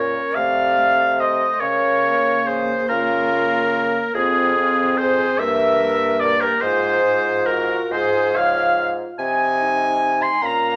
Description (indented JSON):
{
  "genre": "classical, slow romantic movement for wind quintet",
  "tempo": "48 BPM (dotted quarters)",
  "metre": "6/8",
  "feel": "rubato",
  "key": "unclear",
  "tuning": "A4 = 440 Hz",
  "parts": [
    { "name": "mellow silver concert flute", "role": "melody", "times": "0.0-10.8 s", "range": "F4 to Ab5", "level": "-29 LUFS", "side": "equal", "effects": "none" },
    { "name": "clear oboe", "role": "second line", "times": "0.0-10.8 s", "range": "Ab4 to C6", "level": "-22 LUFS", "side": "equal", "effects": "none" },
    { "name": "clear clarinet", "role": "accompaniment", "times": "0.0-10.8 s", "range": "Ab4 to C6", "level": "-25 LUFS", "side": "equal", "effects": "none" },
    { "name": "mellow French horn", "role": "accompaniment", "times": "0.0-10.8 s", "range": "A3 to F4", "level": "-32 LUFS", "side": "equal", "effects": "none" },
    { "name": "warm bassoon", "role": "bass", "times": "0.0-10.8 s", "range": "F2 to Db3", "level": "-26 LUFS", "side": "equal", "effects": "none" }
  ],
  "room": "moderate large studio reverb, RT60 1.1 s",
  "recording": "vinyl crackle",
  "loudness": "-19 LUFS",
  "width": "mono",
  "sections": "0.0-10.8 A section",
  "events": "none",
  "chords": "0.4 F7/C; 1.6 Bbm/Db; 4.1 Fm; 5.4 Edim/G; 6.6 Fm/Ab; 9.2 Ab/C"
}